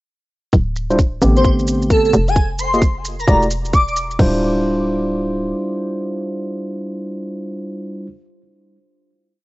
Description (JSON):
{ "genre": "UK garage, two-step garage", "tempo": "131 BPM", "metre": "4/4", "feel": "swing 64% on 16ths", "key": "D minor", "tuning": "A4 = 440 Hz", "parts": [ { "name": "hollow knocking FM bass", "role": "bass", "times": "0.5-5.5 s", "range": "D1 to A1", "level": "-20 LUFS", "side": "equal", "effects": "sidechain pumping" }, { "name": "electronic kick drum", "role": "drums", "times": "0.5-4.3 s", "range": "none", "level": "-14 LUFS", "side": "equal", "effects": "overdrive, cassette tape" }, { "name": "electronic shaker and crash cymbal", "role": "drums", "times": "0.5-4.3 s", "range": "none", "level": "-31 LUFS", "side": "right 2 dB", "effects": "overdrive, low-pass filter on perc, cassette tape, low-pass filter on cymbals" }, { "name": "tine electric piano", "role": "stabs", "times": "0.9-8.1 s", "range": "D3 to Eb5", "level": "-19 LUFS", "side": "equal", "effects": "vintage 12-bit sampler grit, low-pass filter, cassette tape, tape echo" }, { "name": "airy dreamy lead", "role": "melody", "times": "1.4-3.9 s", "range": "A4 to D6", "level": "-19 LUFS", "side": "equal", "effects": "chorus, tape echo" } ], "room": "light reverb", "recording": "home recording on cassette, nothing above 8.0 kHz", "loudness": "-15 LUFS", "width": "side -19 dB against mid", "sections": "0.5-4.2 breakdown; 4.2-7.9 final chord", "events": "filter sweep on tine electric piano 0.5-4.2", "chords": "0.5 N.C.; 1.2 Am11; 2.1 Fm; 3.3 Em11; 4.2 Dm11", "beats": "| 0.53 0.99 1.45 1.90 | 2.36 2.82 3.28 3.74 | 4.19 4.65 5.11 5.57 | 6.03 6.48 6.94 7.40" }